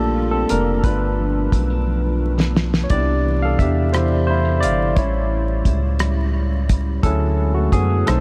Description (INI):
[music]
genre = slow six-eight R&B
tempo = 58 BPM (dotted quarters)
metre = 6/8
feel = straight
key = unclear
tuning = A4 = 440 Hz
[part]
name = mellow electric guitar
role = second line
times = 0.0-8.2 s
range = G2 to A4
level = -29 LUFS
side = equal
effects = ensemble chorus
[part]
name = barky tine electric piano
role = accompaniment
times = 0.0-8.2 s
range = F#3 to F5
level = -24 LUFS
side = equal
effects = subtle chorus
[part]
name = rubbery square bass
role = bass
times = 0.0-8.2 s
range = F1 to F#2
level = -22 LUFS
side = equal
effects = none
[part]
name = cloth-damped thuddy drum kit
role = drums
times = 0.5-8.2 s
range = hi-hat, kick drum, rim click, snare drum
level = -24 LUFS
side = equal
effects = none
[sound]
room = light reverb, studio reverb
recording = vinyl crackle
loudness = -19 LUFS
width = mono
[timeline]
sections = 0.0-8.2 A section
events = tine electric piano solo 0.0-8.2; drum fill 1.9-2.9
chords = 0.0 Gm9; 0.8 G7; 2.9 Cmaj9; 5.0 A7; 7.0 Dmaj9#11